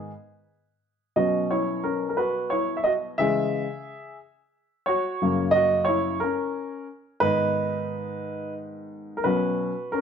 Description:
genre	pop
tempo	59 BPM (dotted quarters)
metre	6/8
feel	straight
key	B major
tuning	A4 = 439 Hz
part	warm baby grand piano	solo	0.0-10.0 s	F#2 to E5	-23 LUFS	equal	none
room	wet stone room reverb, RT60 1.0 s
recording	band playing live in one room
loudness	-23 LUFS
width	side -7 dB against mid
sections	0.0-9.3 A section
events	grand piano solo 0.0-9.3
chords	0.0 G#m; 1.2 Bsus2; 3.2 C#m; 5.2 F#; 7.2 G#m; 9.3 Bsus2

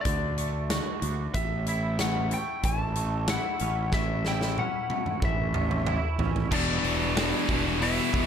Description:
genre	quiet-loud alternative rock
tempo	93 BPM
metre	4/4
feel	straight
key	unclear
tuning	A4 = 440 Hz
part	lightly driven lead guitar	melody	0.0-8.3 s	D4 to A5	-32 LUFS	left 3 dB	analog delay
part	twangy electric guitar	arpeggios	0.0-6.5 s	A2 to F#4	-36 LUFS	right 11 dB	analog chorus, analog delay
part	big rock drum kit	drums	0.0-8.3 s	crash cymbal, hi-hat, kick drum, snare drum, toms	-30 LUFS	equal	none
part	fuzz fingered electric bass	bass	0.1-8.3 s	E1 to D2	-30 LUFS	equal	overdrive
part	string machine, violins	sustained chords	6.5-8.3 s	G3 to B4	-38 LUFS	equal	ensemble chorus
part	biting overdriven guitar	riff	6.5-8.3 s	E2 to E3	-29 LUFS	left 16 dB	none
part	scooped high-gain guitar	riff	6.5-8.3 s	E2 to E3	-30 LUFS	right 15 dB	distortion
room	little or no reverb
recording	none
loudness	-25 LUFS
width	side -8 dB against mid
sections	0.0-6.5 A section; 6.5-8.3 B section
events	drum fill 3.9-6.5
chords	0.0 D; 1.4 A; 6.5 Em

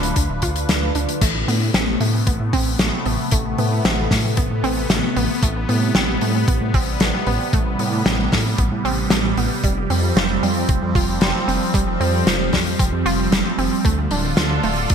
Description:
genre	synthwave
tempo	114 BPM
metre	4/4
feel	straight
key	A minor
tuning	A4 = 440 Hz
part	phased analog pad	sustained chords	0.0-14.9 s	C3 to B4	-22 LUFS	right 1 dB	phaser, chorus, sidechain pumping
part	dark detuned saw bass	bass	0.0-14.9 s	D1 to A2	-22 LUFS	equal	tube saturation
part	loose indie drum kit	drums	0.0-14.9 s	crash cymbal, hi-hat, snare drum	-22 LUFS	left 2 dB	gated reverb
part	wide unison pluck	arpeggios	0.2-14.9 s	G3 to F4	-26 LUFS	right 3 dB	digital delay
part	electronic kick drum	drums	0.2-14.9 s	none	-20 LUFS	equal	none
room	moderate plate reverb, RT60 1.7 s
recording	bright 1980s-style digital production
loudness	-16 LUFS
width	side -7 dB against mid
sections	0.0-1.2 A section; 1.2-14.9 B section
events	kick drops out 0.7-1.2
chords	0.0 Dm; 1.2 Amadd9; 9.6 Fsus2; 13.8 Dm

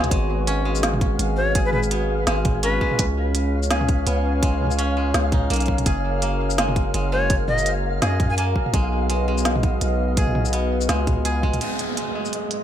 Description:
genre	half-time drum and bass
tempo	167 BPM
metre	4/4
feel	swing 57% on 16ths, half-time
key	G# dorian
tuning	A4 = 442 Hz
part	dark analog pad	sustained chords	0.0-12.6 s	G#3 to G#5	-27 LUFS	left 1 dB	chorus, sidechain pumping
part	koto	arpeggios	0.0-12.6 s	G#3 to G#4	-28 LUFS	right 2 dB	low-pass filter, tape echo
part	long sustained 808-style bass	bass	0.0-11.6 s	F#1 to F#2	-23 LUFS	equal	none
part	organic electronic drum kit	drums	0.0-12.6 s	hi-hat, shaker, snare drum, toms	-25 LUFS	right 1 dB	studio reverb
part	flickering grainy texture	texture	0.0-12.6 s	C#5 to E#5	-32 LUFS	left 2 dB	built-in reverb
part	electronic kick drum	drums	0.1-11.5 s	none	-22 LUFS	equal	studio reverb
part	breathy bright jazz flute	melody	1.4-3.0, 7.1-8.4 s	B4 to G#5	-26 LUFS	left 1 dB	vintage 12-bit sampler grit, tape echo
part	downlifter	sound effects	11.6-12.6 s	none	-28 LUFS	right 3 dB	none
room	light reverb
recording	none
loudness	-19 LUFS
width	side -10 dB against mid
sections	0.0-11.6 A section; 11.6-12.6 B section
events	drop 0.0-11.6; filter sweep on koto 11.6-12.6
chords	0.1 G#m7; 3.0 C#; 5.9 F#; 8.7 B; 11.6 G#m7

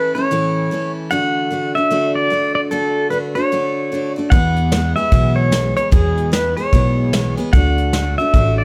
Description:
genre	honky-tonk and classic country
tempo	149 BPM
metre	4/4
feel	swing 61% on 8ths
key	unclear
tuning	A4 = 435 Hz
part	pedal steel guitar	melody	0.0-8.6 s	G#4 to F#5	-21 LUFS	equal	none
part	picked steel-string acoustic guitar	accompaniment	0.0-8.6 s	E2 to G#4	-23 LUFS	equal	none
part	upright bass	bass	4.3-8.6 s	A1 to E2	-21 LUFS	equal	none
part	soft brush drum kit	drums	4.3-8.5 s	hi-hat, kick drum, snare drum	-19 LUFS	equal	none
room	light reverb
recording	close, detailed microphones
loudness	-17 LUFS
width	mono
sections	0.0-8.6 A section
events	none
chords	0.0 A; 1.1 D; 4.3 E; 7.5 D

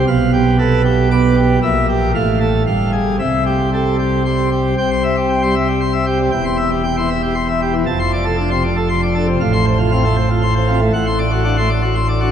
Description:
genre	classical, organ toccata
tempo	117 BPM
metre	3/4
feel	straight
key	C major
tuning	A4 = 440 Hz
part	pipe organ, plenum	solo	0.0-12.3 s	E1 to D6	-13 LUFS	right 1 dB	none
room	wet church reverb, RT60 3.6 s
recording	dark, warm production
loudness	-14 LUFS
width	side -8 dB against mid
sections	0.0-4.8 A section; 4.8-12.3 B section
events	none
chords	0.1 G7/B; 1.6 Edim/Bb; 2.1 F/A; 2.7 Fmadd9/G; 3.2 C; 6.3 C/E; 7.9 F6; 9.4 F/A; 10.9 D7/A

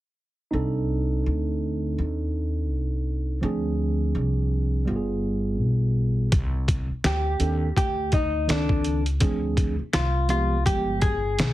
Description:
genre	hip hop, jazz-hop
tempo	83 BPM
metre	4/4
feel	swing 59% on 16ths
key	unclear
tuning	A4 = 439 Hz
part	mellow tine electric piano	accompaniment	0.5-11.1 s	Eb3 to A4	-28 LUFS	right 2 dB	none
part	upright bass	bass	0.5-11.5 s	G1 to Eb2	-25 LUFS	equal	none
part	trip hop sampler-style drum kit	drums	6.3-11.5 s	hi-hat, kick drum, snare drum	-24 LUFS	equal	none
part	vintage hollow-body jazz guitar	melody	7.1-11.5 s	D4 to Ab4	-26 LUFS	left 2 dB	none
room	light reverb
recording	heavily compressed radio sound, multiband compression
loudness	-22 LUFS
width	side -15 dB against mid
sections	0.5-6.3 A section; 6.3-11.5 B section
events	none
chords	0.5 Cm69; 3.4 Dm7b5; 4.9 G7b9; 6.3 Cm69; 9.2 Dm7b5; 10.7 G7b9

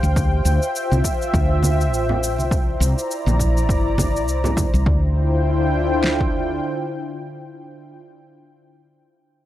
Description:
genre	sunset chillout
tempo	102 BPM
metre	4/4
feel	swing 57% on 16ths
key	D minor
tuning	A4 = 440 Hz
part	lush unison pad	sustained chords	0.0-8.0 s	D3 to Bb5	-23 LUFS	left 1 dB	chorus
part	woody fretless electric bass	bass	0.0-6.6 s	G1 to D2	-20 LUFS	equal	tube saturation, wide subtle chorus
part	shaker	drums	0.0-4.8 s	none	-31 LUFS	left 1 dB	overdrive, studio reverb
part	deep house drum kit	drums	0.2-6.3 s	kick drum, snare drum	-22 LUFS	equal	overdrive, studio reverb
part	congas	percussion	0.9-4.7 s	none	-26 LUFS	right 2 dB	none
room	little or no reverb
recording	dry, gritty hardware recording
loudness	-17 LUFS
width	side -13 dB against mid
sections	0.0-4.9 A section; 4.9-7.2 B section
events	none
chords	0.2 Dm11; 2.5 C9; 4.9 Dm11

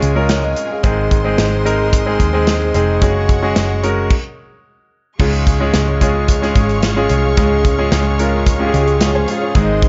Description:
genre	piano-driven pop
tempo	110 BPM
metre	4/4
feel	straight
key	Db major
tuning	A4 = 440 Hz
part	clear baby grand piano	accompaniment	0.0-9.9 s	Ab2 to Ab5	-19 LUFS	equal	none
part	rich studio string section	sustained chords	0.0-9.9 s	F4 to Db6	-28 LUFS	equal	none
part	vintage muted picked electric bass	bass	0.0-9.9 s	F1 to Eb2	-20 LUFS	equal	none
part	modern studio drum kit	drums	0.0-9.9 s	crash cymbal, hi-hat, kick drum, snare drum	-19 LUFS	equal	none
part	fingerpicked steel-string acoustic guitar	riff	5.2-9.9 s	Ab2 to Ab4	-24 LUFS	equal	none
room	little or no reverb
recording	nothing above 7.7 kHz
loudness	-15 LUFS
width	mono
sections	0.0-5.2 A section; 5.2-9.9 B section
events	stop 4.1-5.2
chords	0.0 Db; 0.8 Ab; 3.0 Gbsus2; 5.2 Db

